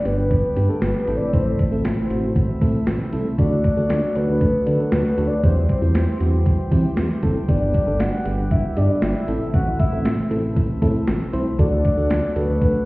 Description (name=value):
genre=synth-pop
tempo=117 BPM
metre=4/4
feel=straight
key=A dorian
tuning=A4 = 440 Hz
part: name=soft octave-layered synth lead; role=melody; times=0.0-12.9 s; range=A4 to F#5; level=-24 LUFS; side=left 1 dB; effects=chorus, tremolo, slapback echo
part: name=pipe organ, sparkling flutes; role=sustained chords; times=0.0-12.9 s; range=C3 to G4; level=-27 LUFS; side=equal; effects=none
part: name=FM electric piano with tremolo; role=accompaniment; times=0.1-12.7 s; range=B3 to C5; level=-27 LUFS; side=right 1 dB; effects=phaser
part: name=smooth synth bass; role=bass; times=0.1-12.7 s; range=F#1 to E3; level=-22 LUFS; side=equal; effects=none
part: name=clean 12-bit digital drum machine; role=drums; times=0.1-12.7 s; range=hi-hat, kick drum, snare drum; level=-21 LUFS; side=equal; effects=none
room=moderate digital room reverb, RT60 1.2 s, digital ambience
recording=heard muffled through a wall, stone room reverb, EQ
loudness=-17 LUFS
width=side -21 dB against mid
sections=0.0-12.9 A section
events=none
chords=0.0 G; 1.1 Am; 3.4 D; 5.4 C/E; 7.5 G; 9.3 Am; 11.6 D